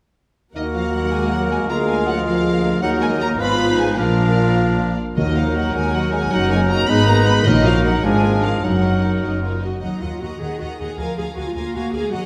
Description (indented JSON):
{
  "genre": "quick classical-period movement for symphony orchestra",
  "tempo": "104 BPM (dotted quarters)",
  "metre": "6/8",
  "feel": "straight",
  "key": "Eb minor",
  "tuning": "A4 = 440 Hz",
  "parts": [
    { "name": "mellow hollow large flute ensemble", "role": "second line", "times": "0.5-9.2 s", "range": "Eb5 to Cb6", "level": "-32 LUFS", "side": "equal", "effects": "none" },
    { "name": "rich studio violin section", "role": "second line", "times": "0.5-12.3 s", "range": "Eb4 to Ab5", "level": "-32 LUFS", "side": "equal", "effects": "none" },
    { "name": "warm studio violin section", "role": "melody", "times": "0.6-12.3 s", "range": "Eb5 to Cb6", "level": "-30 LUFS", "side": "equal", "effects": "none" },
    { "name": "clear clarinet", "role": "second line", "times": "0.6-9.6 s", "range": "D4 to Gb4", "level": "-28 LUFS", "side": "equal", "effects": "none" },
    { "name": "warm oboe", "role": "second line", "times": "0.6-9.6 s", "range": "Bb4 to Cb5", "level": "-29 LUFS", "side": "equal", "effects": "none" },
    { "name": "dark symphonic viola section", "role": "accompaniment", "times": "0.6-12.3 s", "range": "F3 to Bb4", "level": "-29 LUFS", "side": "equal", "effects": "none" },
    { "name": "warm bassoon", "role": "accompaniment", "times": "0.6-9.6 s", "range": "F3 to Bb3", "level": "-28 LUFS", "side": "equal", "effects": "none" },
    { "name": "dark French horn section", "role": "sustained chords", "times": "0.6-9.2 s", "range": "Eb3 to Cb4", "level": "-25 LUFS", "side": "equal", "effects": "none" },
    { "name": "rich studio cello section", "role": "bass", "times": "0.6-12.3 s", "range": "D2 to Bb3", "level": "-27 LUFS", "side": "equal", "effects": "none" },
    { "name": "rich studio double bass section", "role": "bass", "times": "0.6-12.2 s", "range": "Gb1 to Eb2", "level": "-27 LUFS", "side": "equal", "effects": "none" },
    { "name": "timpani", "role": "percussion", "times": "5.2-8.0 s", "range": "Bb2 to Eb3", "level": "-26 LUFS", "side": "equal", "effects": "none" }
  ],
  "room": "wet concert hall reverb, RT60 1.9 s",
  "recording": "none",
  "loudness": "-19 LUFS",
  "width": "mono",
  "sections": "0.6-9.8 A section; 9.8-12.3 A section",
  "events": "none",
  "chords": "0.6 Ebm; 1.7 Bb7/D; 2.8 Ebm; 3.4 Fdim/Ab; 4.0 Bb; 5.2 Ebm; 6.3 Ebm/Gb; 6.9 Abm; 7.5 Ebm/Bb; 8.0 Bb7/Ab; 8.6 Ebm/Gb; 9.8 Ebm; 11.0 Bb7/D"
}